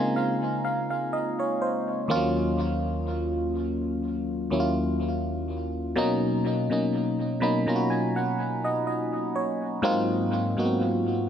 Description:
R&B; 62 BPM; 4/4; swing 54% on 16ths; A4 = 440 Hz
FM electric piano; solo; 0.0-11.3 s; Eb2 to Cb6; -24 LUFS; equal; chorus, tape echo
moderate plate reverb, RT60 3.7 s; echo-heavy mix; -24 LUFS; side -9 dB against mid
0.0-9.8 A section; 9.8-11.3 B section
FM electric piano fill 0.0-2.1, 6.9-9.8
0.0 Dbmaj13; 2.1 Ebm9; 6.0 Cbmaj9; 9.8 Ab13

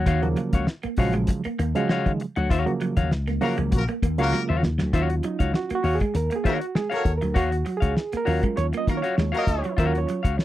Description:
funk; 99 BPM; 4/4; straight; Eb minor; A4 = 440 Hz
clean electric guitar; accompaniment; 0.0-10.4 s; Gb4 to Gb5; -27 LUFS; left 5 dB
semi-hollow electric guitar; riff; 0.0-10.2 s; Eb3 to Bb3; -31 LUFS; right 4 dB; analog chorus
slap bass with an envelope filter; bass; 0.0-10.4 s; Bb1 to Eb3; -25 LUFS; left 1 dB
cloth-damped thuddy drum kit; drums; 0.1-10.4 s; hi-hat, kick drum, snare drum; -24 LUFS; left 1 dB
overdriven reed electric piano; stabs; 0.2-10.4 s; Db3 to Eb5; -27 LUFS; right 4 dB; fast tremolo
warm horn section; second line; 3.4-9.7 s; Bb3 to Db5; -28 LUFS; left 3 dB
little or no reverb; dry, close 1970s-style studio recording; -21 LUFS; side -14 dB against mid
0.0-4.9 A section; 4.9-10.4 B section
band accent 2.5-4.9; drum fill 4.3-4.9; reed electric piano solo 4.9-10.4
0.0 Ebm9

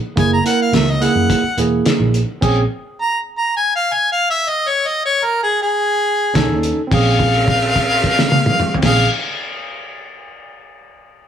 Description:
straight-eighth soul blues; 107 BPM; 4/4; straight; Bb minor; A4 = 440 Hz
clear harmonica; melody; 0.2-9.1 s; Ab4 to Bb5; -17 LUFS; left 1 dB; overdrive
tine electric piano; accompaniment; 0.2-2.6, 6.3-9.1 s; Bb3 to Bb4; -19 LUFS; right 4 dB
vintage muted fingered electric bass; bass; 0.2-2.6, 6.4-9.1 s; Fb1 to Gb2; -19 LUFS; right 1 dB
cloth-damped thuddy drum kit; drums; 0.2-2.6, 6.4-9.0 s; crash cymbal, hi-hat, kick drum, snare drum, toms; -19 LUFS; left 1 dB
light reverb, studio ambience; -14 LUFS; side -9 dB against mid
0.0-6.9 A section; 6.9-9.2 B section
held note 6.9-8.8
0.0 Gb7; 2.4 Bbm7; 6.4 B7; 6.9 Bbm7

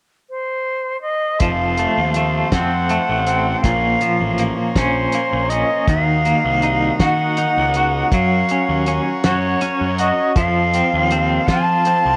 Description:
psychedelic rock; 54 BPM (dotted quarters); 6/8; straight; F phrygian dominant; A4 = 438 Hz
silver concert flute; melody; 0.3-12.2 s; C5 to A5; -22 LUFS; equal; tape echo
overdriven combo organ; sustained chords; 1.4-12.2 s; C4 to C6; -29 LUFS; equal
twangy electric guitar; riff; 1.4-12.2 s; Bb2 to Gb4; -23 LUFS; equal; tremolo
fuzz picked electric bass; bass; 1.4-12.2 s; F1 to F3; -24 LUFS; equal; overdrive
cloth-damped thuddy drum kit; drums; 1.4-12.0 s; hi-hat, kick drum, snare drum; -23 LUFS; equal; vintage 12-bit sampler grit
light reverb, small room ambience; -18 LUFS; mono
0.0-1.4 A section; 1.4-12.2 B section
0.0 N.C.; 1.4 F; 3.6 Bbmadd9; 5.9 Ebmadd9; 8.1 Gb; 10.4 F

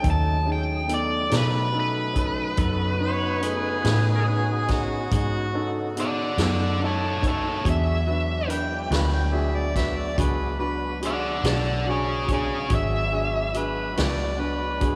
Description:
slow blues; 47 BPM (dotted quarters); 12/8; straight; A4 = 437 Hz
smooth overdriven lead guitar; melody; 0.0-13.5 s; G#4 to A5; -30 LUFS; equal; slapback echo
warm upright piano; accompaniment; 0.0-15.0 s; A3 to B4; -32 LUFS; equal; slapback echo
tonewheel organ; sustained chords; 0.0-15.0 s; C#3 to F#4; -37 LUFS; equal; slow rotary speaker, chorus vibrato
vintage muted fingered electric bass; bass; 0.0-15.0 s; G#1 to B2; -29 LUFS; equal
vintage drum kit; drums; 0.0-15.0 s; hi-hat, kick drum, snare drum; -30 LUFS; equal
mellow harmonica; second line; 3.0-15.0 s; F#4 to B5; -32 LUFS; equal; slapback echo
moderate lush hall reverb, RT60 2.5 s; big arena sound, small room ambience; -24 LUFS; mono
0.0-15.0 A section
0.0 B7; 7.6 E7

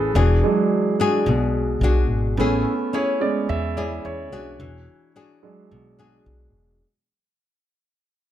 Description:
bossa nova; 108 BPM; 4/4; straight; A4 = 440 Hz
clear concert grand piano; accompaniment; 0.0-6.8 s; F#3 to E5; -23 LUFS; right 3 dB
nylon-string guitar; accompaniment; 0.0-6.8 s; B2 to G#4; -24 LUFS; left 4 dB
upright bass; bass; 0.0-6.8 s; E1 to E2; -22 LUFS; equal
light reverb; -18 LUFS; side -11 dB against mid
0.0-6.8 A section
fade-out 0.0-6.8; grand piano solo 0.0-6.8
0.2 E9; 2.4 Amaj7; 4.6 E9

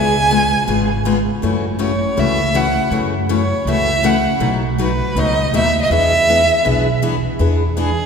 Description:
acoustic string swing (jazz manouche); 161 BPM; 4/4; swing 62% on 8ths; E major; A4 = 444 Hz
clear violin; melody; 0.0-8.1 s; G#4 to G#5; -17 LUFS; right 2 dB
picked steel-string acoustic guitar; accompaniment; 0.0-7.9 s; B2 to G#4; -19 LUFS; left 4 dB
upright bass; bass; 0.0-8.0 s; G#1 to F#2; -20 LUFS; right 1 dB
wet church reverb, RT60 3.2 s; recorded in a church or concert hall; -14 LUFS; side -6 dB against mid
0.0-7.4 A section
0.0 C#7; 1.4 F#m7; 4.4 B7; 5.9 E7

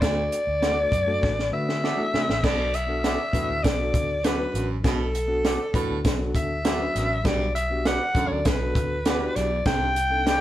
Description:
uptempo 1960s-style soul; 100 BPM; 4/4; straight; A4 = 440 Hz
raspy alto saxophone; melody; 0.0-10.4 s; A4 to G5; -26 LUFS; left 1 dB
bright reed electric piano; accompaniment; 0.0-10.4 s; A3 to B4; -32 LUFS; left 2 dB; fast tremolo
breathy baritone saxophone; riff; 0.0-9.9 s; D2 to C3; -33 LUFS; right 4 dB
vintage muted fingered electric bass; bass; 0.0-10.4 s; A1 to D3; -29 LUFS; equal
compact cocktail drum kit; drums; 0.0-10.4 s; crash cymbal, hi-hat, kick drum, snare drum; -26 LUFS; equal
electric guitar through a small old amp; stabs; 0.6-10.4 s; Eb4 to D5; -33 LUFS; right 4 dB
moderate stone room reverb, RT60 1.0 s; band playing live in one room; -22 LUFS; side -13 dB against mid
0.0-2.4 A section; 2.4-10.4 B section
drum fill 1.2-2.4
0.0 D; 2.4 Bm7; 7.3 Gmaj7/B; 9.7 Cmadd9

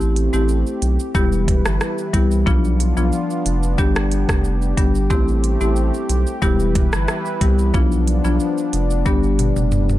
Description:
dancehall; 91 BPM; 4/4; straight; A minor; A4 = 439 Hz
warm analog pad; sustained chords; 0.0-10.0 s; E3 to B4; -26 LUFS; equal; chorus, sidechain pumping
saturated sub bass; bass; 0.0-10.0 s; E1 to C2; -19 LUFS; equal
island pop drum kit; drums; 0.0-10.0 s; hi-hat, kick drum, rim click, shaker, toms; -20 LUFS; equal; vintage 12-bit sampler grit
marimba with medium mallets; accompaniment; 0.3-10.0 s; F3 to G4; -22 LUFS; left 3 dB
little or no reverb; -16 LUFS; side -15 dB against mid
0.0-10.0 A section
drum fill 9.1-10.0
0.0 Am7; 1.1 Em; 2.5 Bdim; 3.8 G; 5.1 Am7; 6.4 Em; 7.7 Bdim; 9.1 G

